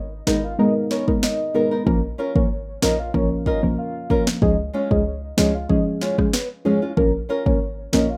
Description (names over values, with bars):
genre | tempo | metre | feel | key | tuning
dancehall | 94 BPM | 4/4 | straight | Bb phrygian | A4 = 440 Hz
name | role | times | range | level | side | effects
short 808-style bass | bass | 0.0-8.2 s | Ab1 to Db2 | -28 LUFS | equal | none
soft octave-layered synth lead | melody | 0.3-8.2 s | Bb4 to F5 | -30 LUFS | equal | chorus, tremolo, tape echo, plate reverb
deep mellow chord stab | accompaniment | 0.3-8.1 s | F3 to Bb4 | -23 LUFS | equal | chorus, plate reverb
nylon-string guitar | arpeggios | 0.3-8.1 s | Ab3 to Bb4 | -29 LUFS | equal | plate reverb
afro-pop drum kit | drums | 0.3-8.1 s | kick drum, rim click, snare drum | -25 LUFS | equal | none
room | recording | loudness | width
moderate studio reverb, RT60 0.5 s | rough home demo mix | -21 LUFS | mono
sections
0.0-8.2 A section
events
none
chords
0.0 Abmadd9; 1.9 Bbm; 4.4 Db; 7.0 Bbm